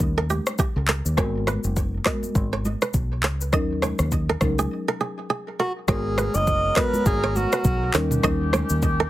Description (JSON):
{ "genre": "afrobeats", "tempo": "102 BPM", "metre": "4/4", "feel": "swing 58% on 16ths", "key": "G# minor", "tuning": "A4 = 437 Hz", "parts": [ { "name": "fingered electric bass", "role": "bass", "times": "0.0-9.0 s", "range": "F#1 to D#2", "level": "-25 LUFS", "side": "equal", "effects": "none" }, { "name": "afro-pop drum kit", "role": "drums", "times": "0.0-9.0 s", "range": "handclaps, kick drum, rim click, shaker, toms", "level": "-25 LUFS", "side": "equal", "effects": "none" }, { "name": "kora", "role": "riff", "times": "0.2-9.1 s", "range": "G4 to D#5", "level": "-27 LUFS", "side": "right 4 dB", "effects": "tape echo" }, { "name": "congas", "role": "percussion", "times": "0.3-9.0 s", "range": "none", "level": "-33 LUFS", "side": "right 2 dB", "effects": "none" }, { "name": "marimba with medium mallets", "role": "accompaniment", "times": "1.2-9.1 s", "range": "F#3 to A#4", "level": "-29 LUFS", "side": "left 2 dB", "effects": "none" }, { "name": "warm alto saxophone", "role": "melody", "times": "5.6-7.9 s", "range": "F#4 to D#5", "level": "-25 LUFS", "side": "right 1 dB", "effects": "none" }, { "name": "mellow woodwind section", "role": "sustained chords", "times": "5.9-9.1 s", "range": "D#3 to A#4", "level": "-31 LUFS", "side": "right 1 dB", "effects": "stereo widening" } ], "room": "little or no reverb", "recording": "heavily compressed radio sound, multiband compression", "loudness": "-20 LUFS", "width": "side -15 dB against mid", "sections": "0.0-5.9 A section; 5.9-9.1 B section", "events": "break 4.7-5.9", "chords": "0.0 D#7; 1.2 G#m9; 3.5 D#m7; 5.9 G#m9; 7.9 D#7" }